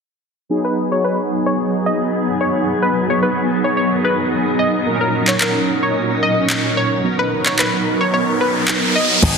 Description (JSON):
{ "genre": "dance-pop", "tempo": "110 BPM", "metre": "4/4", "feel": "straight", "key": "G# minor", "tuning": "A4 = 440 Hz", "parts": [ { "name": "mellow synth brass", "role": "accompaniment", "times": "0.5-9.4 s", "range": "A#2 to A#4", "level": "-19 LUFS", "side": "right 2 dB", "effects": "chorus, tremolo, sidechain pumping, low-pass filter" }, { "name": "granular cloud pad", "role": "sustained chords", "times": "1.1-9.2 s", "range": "A#2 to A#4", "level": "-22 LUFS", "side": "left 1 dB", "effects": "built-in reverb, sidechain pumping, low-pass filter" }, { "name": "analog pluck", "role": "melody", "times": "0.6-9.1 s", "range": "A#4 to D#5", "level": "-20 LUFS", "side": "left 1 dB", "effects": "chorus, sidechain pumping, low-pass filter, ping-pong delay" }, { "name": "smooth R&B drum kit", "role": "drums", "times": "5.3-9.4 s", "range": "crash cymbal, handclaps, kick drum", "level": "-20 LUFS", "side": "left 1 dB", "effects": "overdrive" }, { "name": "riser", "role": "sound effects", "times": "7.9-9.2 s", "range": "none", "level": "-20 LUFS", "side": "equal", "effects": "none" }, { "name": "slap bass with an envelope filter", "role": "bass", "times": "9.2-9.4 s", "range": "G#1", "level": "-15 LUFS", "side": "equal", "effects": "sidechain pumping" } ], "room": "wet lush hall reverb, RT60 1.9 s, digital ambience", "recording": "dense, heavily limited modern master", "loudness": "-15 LUFS", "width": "side -5 dB against mid", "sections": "0.5-9.2 A section", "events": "filter sweep 0.5-9.2; riser 7.9-9.2", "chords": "0.5 G#m7; 4.9 D#m7/A#; 7.0 Bmaj7" }